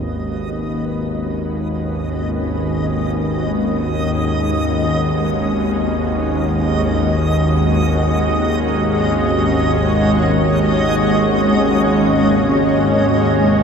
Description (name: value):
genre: dark ambient drone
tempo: free time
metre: none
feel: none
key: G# minor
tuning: A4 = 440 Hz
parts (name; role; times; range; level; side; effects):
- granular cloud pad; sustained chords; 0.0-13.6 s; G#3 to D#5; -19 LUFS; equal; built-in reverb, shimmer reverb
- bowed-like drone; drone; 0.0-13.6 s; G#1 to D#2; -17 LUFS; equal; built-in reverb
- backwards swelling texture; texture; 0.1-13.6 s; D#5; -24 LUFS; right 1 dB; built-in reverb, shimmer reverb
room: wet huge ambient reverb, RT60 8.1 s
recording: in a vast, echoing space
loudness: -15 LUFS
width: side -6 dB against mid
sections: 0.0-13.6 A section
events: fade-in on ambient pad 0.0-13.6; fade-in on synth texture 0.0-13.6; filter sweep on synth drone 0.0-13.6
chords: 0.0 G#m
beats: free time